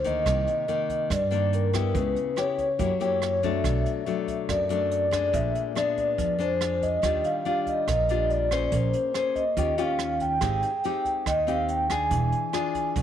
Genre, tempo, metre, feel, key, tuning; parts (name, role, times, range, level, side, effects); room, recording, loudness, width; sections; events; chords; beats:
bossa nova; 142 BPM; 4/4; straight; A4 = 440 Hz
vibraphone with soft mallets; melody; 0.0-13.0 s; Bb4 to Ab5; -26 LUFS; equal
nylon-string guitar; accompaniment; 0.0-13.0 s; F#2 to C5; -30 LUFS; left 8 dB
upright bass; bass; 0.0-13.0 s; E1 to G2; -29 LUFS; right 2 dB
jazz brush drum kit; drums; 0.0-13.0 s; hi-hat, kick drum, rim click; -34 LUFS; right 6 dB
light reverb; 1960s-style stereo with parts hard left and right; -23 LUFS; side -10 dB against mid
0.0-13.0 A section
0.3 Cm9; 1.9 C#m7b5; 2.8 F#7b9; 3.6 Bm7; 5.3 Bb7b9; 7.0 Ebmaj9; 8.7 Bbm9; 9.6 Eb9; 10.4 Abmaj7; 12.1 E7b9
| 0.26 0.68 1.10 1.52 | 1.95 2.37 2.79 3.22 | 3.64 4.06 4.49 4.91 | 5.33 5.76 6.18 6.60 | 7.03 7.45 7.88 8.30 | 8.72 9.15 9.57 9.99 | 10.42 10.84 11.26 11.69 | 12.11 12.54 12.96